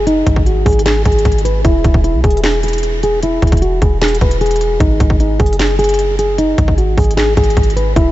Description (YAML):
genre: hip hop, trap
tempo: 152 BPM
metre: 4/4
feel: half-time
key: G# minor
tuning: A4 = 440 Hz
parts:
  - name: nylon-string guitar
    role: melody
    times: 0.0-8.1 s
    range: D#4 to B4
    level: -15 LUFS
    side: equal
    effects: low-pass filter, diffuse ambient delay
  - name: clean 808-style bass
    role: bass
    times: 0.0-8.1 s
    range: E1 to B1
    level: -15 LUFS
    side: equal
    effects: none
  - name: trap drum kit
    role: drums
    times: 0.1-8.1 s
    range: handclaps, hi-hat, kick drum, snare drum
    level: -16 LUFS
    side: equal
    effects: none
room: light reverb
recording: nothing above 7.9 kHz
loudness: -11 LUFS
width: side -15 dB against mid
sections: 0.0-8.1 A section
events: filter sweep on nylon-string guitar 0.0-8.1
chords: 0.0 G#5; 1.6 E; 4.8 G#5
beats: | 0.07 0.46 0.86 1.25 | 1.65 2.04 2.44 2.83 | 3.23 3.62 4.01 4.41 | 4.80 5.20 5.59 5.99 | 6.38 6.78 7.17 7.57 | 7.96